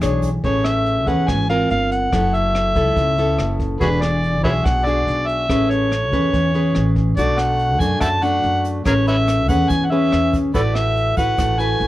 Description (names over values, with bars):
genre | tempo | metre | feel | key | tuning
bossa nova | 142 BPM | 4/4 | straight | A major | A4 = 440 Hz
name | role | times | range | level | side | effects
nylon-string guitar | accompaniment | 0.0-11.9 s | B2 to C#5 | -20 LUFS | left 1 dB | none
upright bass | bass | 0.0-11.9 s | E1 to F#2 | -22 LUFS | equal | none
jazz brush drum kit | drums | 0.0-11.9 s | hi-hat, kick drum, rim click | -26 LUFS | equal | none
tube shaker | percussion | 0.0-0.4, 7.2-11.8 s | none | -44 LUFS | right 6 dB | none
overdriven harmonica | melody | 0.5-11.9 s | F#4 to A5 | -20 LUFS | equal | none
room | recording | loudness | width
moderate studio reverb, RT60 0.6 s | worn, warbling old tape, cassette tape, warbly pitch drift | -16 LUFS | side -15 dB against mid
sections
0.4-11.9 A section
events
none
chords
0.4 Amaj9; 1.7 Gm7; 2.1 F#m7; 3.8 E9; 5.5 Amaj9; 7.2 Bm7; 8.9 Amaj9; 10.5 F#m11/A